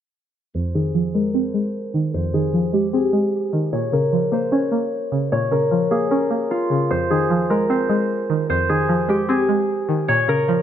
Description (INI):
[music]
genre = hip hop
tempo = 151 BPM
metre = 4/4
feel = half-time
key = F minor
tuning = A4 = 439 Hz
[part]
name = Celtic harp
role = melody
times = 0.5-10.6 s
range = F4 to Db5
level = -21 LUFS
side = left 1 dB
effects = low-pass filter, tape echo
[part]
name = string-like resonator pluck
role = accompaniment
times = 0.5-10.6 s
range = F2 to Db4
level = -20 LUFS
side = right 1 dB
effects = chorus, low-pass filter
[sound]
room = light reverb, studio ambience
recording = dark, warm production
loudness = -18 LUFS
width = side -10 dB against mid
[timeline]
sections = 0.5-10.6 A section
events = filter sweep 0.5-10.6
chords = 0.5 Fm7; 3.7 Bbm; 6.9 Fm7; 10.1 Bbm